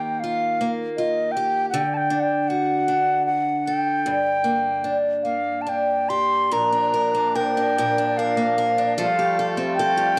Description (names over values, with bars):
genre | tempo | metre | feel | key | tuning
celtic folk, Celtic slow air | 69-80 BPM | 3/4 | rubato | unclear | A4 = 441 Hz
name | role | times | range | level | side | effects
bright wooden flute | melody | 0.0-10.2 s | Eb5 to C6 | -24 LUFS | equal | cassette tape
picked steel-string acoustic guitar | accompaniment | 0.0-10.2 s | G2 to Bb4 | -27 LUFS | equal | cassette tape
musette accordion | sustained chords | 6.5-10.2 s | Bb2 to F4 | -32 LUFS | equal | cassette tape
room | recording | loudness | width
wet spring reverb, RT60 1.5 s, studio reverb | home recording on cassette | -22 LUFS | mono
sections
0.0-6.5 A section; 6.5-10.2 B section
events
none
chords
0.0 Ebadd9; 1.7 D; 4.1 Gm; 6.5 Bb; 9.0 Fadd9